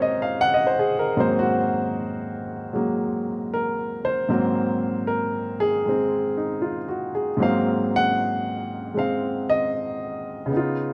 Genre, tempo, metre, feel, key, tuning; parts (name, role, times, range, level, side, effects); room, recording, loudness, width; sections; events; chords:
solo jazz; 77 BPM; 4/4; swing 68% on 8ths; Ab mixolydian; A4 = 440 Hz
warm baby grand piano; solo; 0.0-10.9 s; Ab2 to Gb5; -24 LUFS; equal
light reverb; close, detailed microphones; -24 LUFS; mono
0.0-10.9 A section
grand piano solo 0.0-10.9
0.0 Ab9